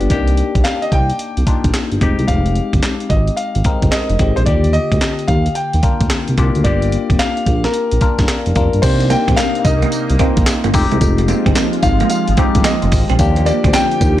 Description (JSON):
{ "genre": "R&B, new jack swing", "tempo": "110 BPM", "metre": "4/4", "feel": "swing 65% on 16ths", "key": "C minor", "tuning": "A4 = 440 Hz", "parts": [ { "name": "bell-like tine electric piano", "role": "accompaniment", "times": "0.0-14.2 s", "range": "D3 to Bb4", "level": "-20 LUFS", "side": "left 6 dB", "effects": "phaser" }, { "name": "smooth synth bass", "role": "bass", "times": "0.0-14.2 s", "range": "F1 to Eb2", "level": "-16 LUFS", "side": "equal", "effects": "none" }, { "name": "breakbeat sampler-style drum kit", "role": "drums", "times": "0.0-14.2 s", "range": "crash cymbal, handclaps, hi-hat, kick drum, snare drum, tambourine", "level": "-17 LUFS", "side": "equal", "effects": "vintage 12-bit sampler grit" }, { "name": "warm concert grand piano", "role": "melody", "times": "0.6-14.2 s", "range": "Bb4 to G5", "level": "-21 LUFS", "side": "left 1 dB", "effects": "none" }, { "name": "phased analog pad", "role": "sustained chords", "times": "9.3-14.2 s", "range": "C3 to G4", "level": "-23 LUFS", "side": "right 3 dB", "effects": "phaser, chorus" }, { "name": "clean electric guitar", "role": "riff", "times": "9.0-14.0 s", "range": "Ab3 to C4", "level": "-22 LUFS", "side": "right 9 dB", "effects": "lush chorus" } ], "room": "little or no reverb", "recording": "none", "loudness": "-12 LUFS", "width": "side -13 dB against mid", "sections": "0.0-8.8 A section; 8.8-14.2 B section", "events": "none", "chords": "0.1 Cm7; 2.0 Fm7; 4.5 Ebmaj7; 6.6 Gm7; 8.8 Cm7; 10.7 Fm7; 13.2 Ebmaj7", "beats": "| 0.10 0.65 1.19 1.74 | 2.28 2.83 3.38 3.92 | 4.47 5.01 5.56 6.10 | 6.65 7.19 7.74 8.28 | 8.83 9.38 9.92 10.47 | 11.01 11.56 12.10 12.65 | 13.19 13.74" }